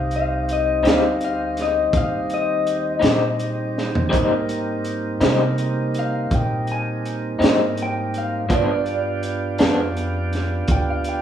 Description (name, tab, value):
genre	slow blues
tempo	55 BPM (dotted quarters)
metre	12/8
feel	straight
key	C minor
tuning	A4 = 440 Hz
part	electric guitar through a small old amp	melody	0.0-11.2 s	D5 to Ab5	-24 LUFS	left 4 dB	spring reverb
part	tonewheel organ	sustained chords	0.0-11.2 s	G3 to G4	-25 LUFS	right 3 dB	slow rotary speaker
part	upright bass	bass	0.0-11.2 s	C2 to C3	-27 LUFS	equal	none
part	crunchy breakbeat drum kit	drums	0.1-11.2 s	hi-hat, kick drum, snare drum, toms	-22 LUFS	equal	none
part	electric guitar through a small old amp	accompaniment	0.8-9.8 s	G2 to Eb4	-22 LUFS	left 2 dB	tremolo
room	light reverb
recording	rough home demo mix, studio reverb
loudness	-18 LUFS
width	side -9 dB against mid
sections	0.0-11.2 A section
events	drum fill 3.8-4.1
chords	0.0 Cm; 4.1 Abmaj7; 8.5 G7